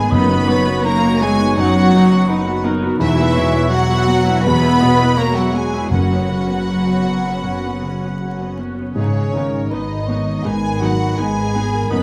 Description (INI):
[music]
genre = cinematic, emotional film score for orchestra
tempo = 81 BPM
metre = 4/4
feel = uneven beats, rubato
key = unclear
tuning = A4 = 440 Hz
[part]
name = clear studio violin section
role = melody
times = 0.0-12.0 s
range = C#5 to B5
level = -28 LUFS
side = equal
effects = none
[part]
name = bright large flute ensemble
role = second line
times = 0.0-12.0 s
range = C#5 to B5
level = -29 LUFS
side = equal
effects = none
[part]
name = dark studio violin section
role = second line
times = 0.0-12.0 s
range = C#4 to B4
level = -29 LUFS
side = equal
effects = none
[part]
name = mellow cor anglais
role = second line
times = 0.0-12.0 s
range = G#4 to D#5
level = -29 LUFS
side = equal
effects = none
[part]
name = felt-muted upright piano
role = accompaniment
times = 0.0-12.0 s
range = E2 to B4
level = -24 LUFS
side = equal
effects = none
[part]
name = warm studio viola section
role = accompaniment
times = 0.0-12.0 s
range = F#3 to F#4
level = -28 LUFS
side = equal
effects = none
[part]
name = mellow French horn section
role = sustained chords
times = 0.0-12.0 s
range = C#3 to B3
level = -26 LUFS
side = equal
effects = none
[part]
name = concert harp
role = arpeggios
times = 0.0-12.0 s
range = E2 to D#6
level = -29 LUFS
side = equal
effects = none
[part]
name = dark studio double bass section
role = bass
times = 0.0-12.0 s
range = E1 to G#1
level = -26 LUFS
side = equal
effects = none
[part]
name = warm studio cello section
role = bass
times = 0.0-12.0 s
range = C#3 to B3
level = -23 LUFS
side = equal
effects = none
[part]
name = timpani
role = percussion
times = 0.1-1.2, 5.9-7.0 s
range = F#2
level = -24 LUFS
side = equal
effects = none
[sound]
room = moderate scoring stage reverb, RT60 1.7 s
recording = close, detailed microphones, vinyl crackle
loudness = -17 LUFS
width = mono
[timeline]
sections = 0.0-12.0 A section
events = none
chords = 0.1 B/F#; 3.0 Esus2; 5.9 F#sus4; 9.0 G#madd9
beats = | 0.12 0.85 1.57 2.29 | 3.00 3.70 4.45 5.18 | 5.91 6.66 7.43 8.20 | 8.96 9.71 10.44 11.17 | 11.90